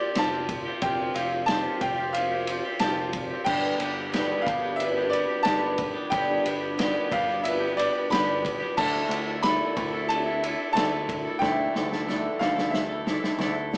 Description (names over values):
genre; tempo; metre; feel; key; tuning
folk rock and heartland rock; 91 BPM; 4/4; straight; G mixolydian; A4 = 440 Hz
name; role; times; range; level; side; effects
bright grand piano; melody; 0.0-13.7 s; D5 to B5; -30 LUFS; equal; none
picked twelve-string acoustic guitar; accompaniment; 0.0-13.8 s; G2 to B4; -34 LUFS; equal; none
rich chamber string section; sustained chords; 0.0-13.8 s; E3 to F5; -44 LUFS; equal; none
twangy electric guitar; riff; 0.0-13.8 s; G2 to A4; -35 LUFS; equal; none
reed electric piano; accompaniment; 0.1-13.8 s; C4 to D5; -41 LUFS; equal; none
picked electric bass; bass; 0.2-13.8 s; F1 to D2; -39 LUFS; equal; none
vintage drum kit; drums; 0.2-13.8 s; crash cymbal, kick drum, ride cymbal, snare drum; -32 LUFS; equal; none
room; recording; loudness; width
moderate studio reverb, RT60 0.8 s; band playing live in one room, small speaker sound; -26 LUFS; mono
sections
0.0-13.8 A section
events
drum fill 11.4-13.8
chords
0.0 Fsus2; 3.5 G; 8.8 Dsus2